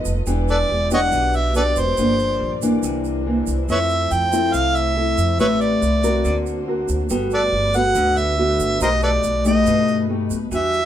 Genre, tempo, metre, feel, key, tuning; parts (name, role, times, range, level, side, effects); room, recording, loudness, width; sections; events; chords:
bossa nova; 140 BPM; 4/4; straight; A4 = 441 Hz
nylon-string guitar; accompaniment; 0.0-10.9 s; G2 to B4; -21 LUFS; left 2 dB
warm studio string section; sustained chords; 0.0-10.9 s; G3 to E5; -31 LUFS; right 2 dB
upright bass; bass; 0.1-10.9 s; E1 to G2; -24 LUFS; right 1 dB
tube shaker; percussion; 0.1-10.9 s; -34 LUFS; right 8 dB
warm harmonica; melody; 0.5-10.9 s; A4 to G5; -19 LUFS; right 1 dB
moderate studio reverb, RT60 0.6 s; band playing live in one room; -17 LUFS; side -10 dB against mid
0.0-10.5 A section
0.3 Em7; 2.0 Gm7; 2.8 C9; 3.7 Fmaj7; 5.4 Am9; 6.2 Daug7; 7.1 Gmaj9; 8.8 B7alt